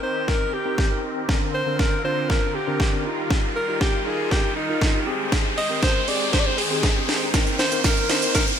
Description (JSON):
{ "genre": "dance-pop", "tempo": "119 BPM", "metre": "4/4", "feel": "straight", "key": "C minor", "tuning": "A4 = 440 Hz", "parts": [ { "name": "warm alto saxophone", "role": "melody", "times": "0.0-8.5 s", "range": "Eb4 to Eb5", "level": "-26 LUFS", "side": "equal", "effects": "ping-pong delay" }, { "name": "mellow tine electric piano", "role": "accompaniment", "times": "0.0-8.6 s", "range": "D3 to Bb4", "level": "-29 LUFS", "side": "left 1 dB", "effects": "fast stereo tremolo, sidechain pumping" }, { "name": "filtered supersaw swell", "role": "sustained chords", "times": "0.0-8.6 s", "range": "D3 to G5", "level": "-30 LUFS", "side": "right 1 dB", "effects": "lush chorus, sidechain pumping" }, { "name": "riser", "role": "sound effects", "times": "1.2-8.6 s", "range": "none", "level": "-28 LUFS", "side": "equal", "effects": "none" }, { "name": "house drum kit", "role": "drums", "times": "0.3-8.6 s", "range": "hi-hat, kick drum, shaker, snare drum", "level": "-22 LUFS", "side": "equal", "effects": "gated reverb" }, { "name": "tambourine", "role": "percussion", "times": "7.3-8.5 s", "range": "none", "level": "barely audible", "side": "none", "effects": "none" } ], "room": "moderate lush hall reverb, RT60 1.9 s", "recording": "bright 1980s-style digital production", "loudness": "-19 LUFS", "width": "side -8 dB against mid", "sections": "0.0-8.6 A section", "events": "build-up 0.0-8.6; drum fill 0.0-8.6; riser 1.2-8.6", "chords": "0.0 Cm7; 1.3 Bbadd9/D; 3.1 Ebadd9; 5.1 Abmaj7; 7.3 Cm7", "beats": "0.28 0.79 | 1.29 1.79 2.30 2.80 | 3.31 3.81 4.31 4.82 | 5.32 5.83 6.33 6.83 | 7.34 7.84 8.35" }